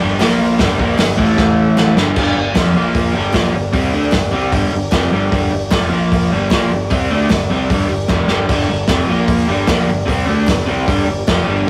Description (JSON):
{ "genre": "garage rock duo or trio", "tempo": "152 BPM", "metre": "4/4", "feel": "straight", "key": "G minor", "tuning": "A4 = 438 Hz", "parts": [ { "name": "combo organ", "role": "sustained chords", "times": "0.0-11.7 s", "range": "E4 to F5", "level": "-27 LUFS", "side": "equal", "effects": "none" }, { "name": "crunchy overdriven guitar", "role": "riff", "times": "0.0-11.7 s", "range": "F2 to D4", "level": "-18 LUFS", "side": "equal", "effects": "none" }, { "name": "fuzz fingered electric bass", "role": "bass", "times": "0.0-11.7 s", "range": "F1 to D2", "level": "-26 LUFS", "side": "equal", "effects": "overdrive" }, { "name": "crunchy breakbeat drum kit", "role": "drums", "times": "0.2-11.4 s", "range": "crash cymbal, hi-hat, kick drum, snare drum, splash cymbal", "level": "-20 LUFS", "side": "equal", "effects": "none" }, { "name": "group handclap", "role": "percussion", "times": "0.2-11.4 s", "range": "none", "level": "-37 LUFS", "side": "equal", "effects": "none" } ], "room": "light reverb", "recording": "rough rehearsal-room recording", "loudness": "-15 LUFS", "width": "mono", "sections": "0.0-2.2 A section; 2.2-11.7 B section", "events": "drum fill 1.4-2.2, 8.1-8.5", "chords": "0.2 Bb5; 0.6 Gm; 1.2 A5; 2.0 G5; 2.2 Gm; 2.8 Bb5; 3.2 Gm; 5.9 Bb5; 6.3 Gm; 9.1 Bb5; 9.5 Gm" }